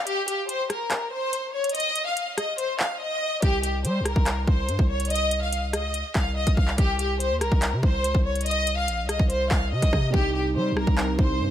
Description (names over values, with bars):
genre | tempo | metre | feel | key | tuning
hip hop, drill | 143 BPM | 4/4 | half-time | C phrygian | A4 = 441 Hz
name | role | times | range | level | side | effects
rich studio violin section | melody | 0.0-11.5 s | G4 to F5 | -26 LUFS | left 1 dB | none
drill drum kit | drums | 0.1-11.3 s | handclaps, hi-hat, kick drum, rim click | -24 LUFS | equal | overdrive
hard-hitting 808-style bass | bass | 3.4-11.5 s | Bb1 to G3 | -26 LUFS | equal | none
felt-muted upright piano | accompaniment | 10.1-11.5 s | C3 to Eb4 | -29 LUFS | right 6 dB | none
sweeping resonant pad | sustained chords | 10.1-11.5 s | C3 to Eb4 | -30 LUFS | left 1 dB | chorus, phaser
room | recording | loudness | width
light reverb, digital ambience | none | -22 LUFS | side -11 dB against mid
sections
0.0-11.5 A section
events
break 0.0-3.4; drums muted 3.0-3.4; hi-hats muted 10.1-11.5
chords
0.0 N.C.; 3.4 Cm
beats
| 0.07 0.49 0.91 1.33 | 1.75 2.17 2.59 3.01 | 3.42 3.85 4.26 4.68 | 5.10 5.52 5.94 6.36 | 6.78 7.20 7.62 8.04 | 8.46 8.88 9.30 9.72 | 10.14 10.56 10.98 11.40